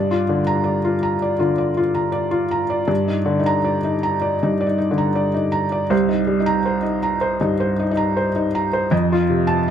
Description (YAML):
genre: neoclassical minimalist piano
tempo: 80 BPM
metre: 4/4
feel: rubato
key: G minor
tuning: A4 = 440 Hz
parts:
  - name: felt-muted upright piano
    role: solo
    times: 0.0-9.7 s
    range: C2 to Bb5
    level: -17 LUFS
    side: equal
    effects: none
room: moderate concert hall reverb, RT60 2.5 s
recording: close, detailed microphones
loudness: -17 LUFS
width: side -9 dB against mid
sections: 0.0-9.7 A section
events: none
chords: 0.0 Gm7; 2.9 Ebmaj7/G; 5.9 Cm7; 8.9 F7